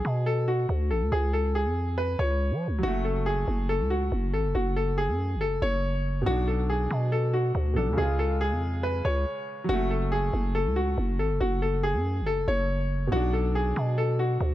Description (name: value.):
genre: hip hop, drill.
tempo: 140 BPM.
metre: 4/4.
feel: half-time.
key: F# harmonic minor.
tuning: A4 = 440 Hz.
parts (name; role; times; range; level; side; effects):
clear upright piano; melody; 0.0-14.5 s; F#4 to C#5; -28 LUFS; left 1 dB; ping-pong delay.
growling 808-style bass; bass; 0.0-14.5 s; F#1 to E#3; -26 LUFS; equal; none.
warm grand piano; accompaniment; 2.8-14.5 s; B2 to E#4; -35 LUFS; right 1 dB; none.
room: small room ambience.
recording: dark, warm production.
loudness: -24 LUFS.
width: side -14 dB against mid.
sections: 0.0-9.7 A section; 9.7-14.5 B section.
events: break 0.0-2.8, 9.3-9.7.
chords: 0.0 Bm; 1.1 C#; 2.8 F#m; 6.3 Bm; 8.0 C#; 9.7 F#m; 13.1 Bm.